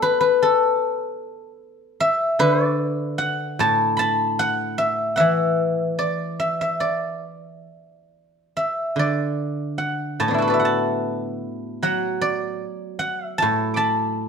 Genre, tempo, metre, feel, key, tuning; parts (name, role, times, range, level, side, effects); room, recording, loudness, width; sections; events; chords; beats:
chinese traditional, Chinese solo plucked strings; 74 BPM; 4/4; rubato; D gong mode; A4 = 440 Hz
guzheng; solo; 0.0-14.3 s; A2 to D6; -20 LUFS; left 1 dB
wet stone room reverb, RT60 1.1 s; band playing live in one room; -19 LUFS; side -6 dB against mid
0.0-14.3 A section
0.41 1.21 | 2.02 2.82 3.62 4.42 | 5.22 6.03 6.84 7.69 | 8.55 9.39 10.22 11.03 | 11.83 12.64 13.44 14.22